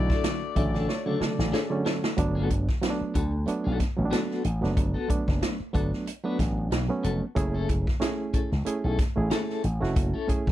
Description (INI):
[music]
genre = funk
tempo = 92 BPM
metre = 4/4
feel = swing 56% on 16ths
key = unclear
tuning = A4 = 439 Hz
[part]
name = mellow horn section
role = second line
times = 0.0-1.8 s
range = A3 to D5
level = -34 LUFS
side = left 11 dB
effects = none
[part]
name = reed electric piano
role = stabs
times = 0.0-10.5 s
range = C#3 to E5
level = -30 LUFS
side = right 3 dB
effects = fast tremolo
[part]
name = slap bass with an envelope filter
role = bass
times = 0.0-10.5 s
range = E1 to D2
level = -27 LUFS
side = equal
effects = none
[part]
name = clean electric guitar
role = accompaniment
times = 0.1-10.5 s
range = B3 to D5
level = -33 LUFS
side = left 6 dB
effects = tremolo
[part]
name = swinging big-band drum kit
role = drums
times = 0.1-10.5 s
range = hi-hat, kick drum, snare drum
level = -28 LUFS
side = equal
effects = none
[sound]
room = little or no reverb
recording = none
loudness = -24 LUFS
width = side -13 dB against mid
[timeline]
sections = 0.0-2.2 A section; 2.2-10.5 B section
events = reed electric piano fill 0.2-2.2; drum fill 0.9-2.2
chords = 0.0 Bm9 (rootless); 2.2 Gmaj9; 7.4 F#m7